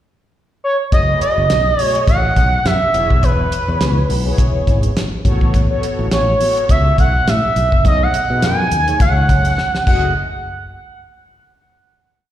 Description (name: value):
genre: early-eighties boogie funk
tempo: 104 BPM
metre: 4/4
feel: swing 56% on 16ths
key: F# dorian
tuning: A4 = 440 Hz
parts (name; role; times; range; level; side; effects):
- expressive portamento lead; melody; 0.6-10.1 s; B4 to G#5; -17 LUFS; right 1 dB; chorus, slapback echo, tape echo
- mellow synth brass; accompaniment; 0.9-10.1 s; A3 to D#5; -25 LUFS; left 2 dB; chorus, phaser, slapback echo
- fingered electric bass; bass; 0.9-10.1 s; E1 to B2; -17 LUFS; equal; none
- damped 70s drum kit; drums; 0.9-10.0 s; crash cymbal, hi-hat, kick drum, snare drum; -17 LUFS; equal; none
room: light reverb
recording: live gig heard through the venue's PA, recital hall reverb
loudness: -13 LUFS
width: side -12 dB against mid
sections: 0.0-0.9 pickup bar; 0.9-10.2 verse; 10.2-12.3 final hit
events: drum fill 9.6-10.2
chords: 0.0 N.C.; 0.9 F#m69; 2.9 E6; 5.3 A69; 7.8 B13; 9.9 F#m69; 10.2 N.C.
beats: 0.35 | 0.92 1.50 2.08 2.65 | 3.23 3.81 4.38 4.96 | 5.54 6.12 6.69 7.27 | 7.85 8.42 9.00 9.58